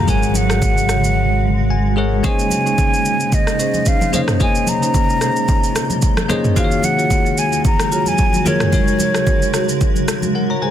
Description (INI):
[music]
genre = amapiano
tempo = 111 BPM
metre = 4/4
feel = swing 55% on 16ths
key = Bb minor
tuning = A4 = 437 Hz
[part]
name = mellow hollow silver concert flute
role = melody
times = 0.0-10.1 s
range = Db5 to Bb5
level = -20 LUFS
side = equal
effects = tape echo
[part]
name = bell-like tine electric piano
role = accompaniment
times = 0.0-10.7 s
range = Eb3 to Bb5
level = -22 LUFS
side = left 6 dB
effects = none
[part]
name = granular cloud pad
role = sustained chords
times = 0.0-10.7 s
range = Eb2 to Gb4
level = -22 LUFS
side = right 2 dB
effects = built-in reverb, sidechain pumping
[part]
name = fingered electric bass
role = bass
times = 0.0-2.2 s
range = Ab1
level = -18 LUFS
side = equal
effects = none
[part]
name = deep house drum kit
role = drums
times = 0.1-10.3 s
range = kick drum, rim click, shaker, toms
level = -18 LUFS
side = equal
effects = overdrive
[part]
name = congas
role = percussion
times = 0.3-10.3 s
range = none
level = -26 LUFS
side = right 3 dB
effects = none
[part]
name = marimba with medium mallets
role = stabs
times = 0.5-10.7 s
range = Db4 to Db5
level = -26 LUFS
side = right 4 dB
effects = tape echo
[sound]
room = light reverb, digital ambience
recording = dense, heavily limited modern master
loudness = -14 LUFS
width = side -10 dB against mid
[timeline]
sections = 0.0-10.7 A section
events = silent gap 1.2-2.2; tine electric piano fill 1.4-2.2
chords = 0.1 Ab7sus4; 2.2 Bbm11; 6.6 Ebm11; 8.7 Ab7sus4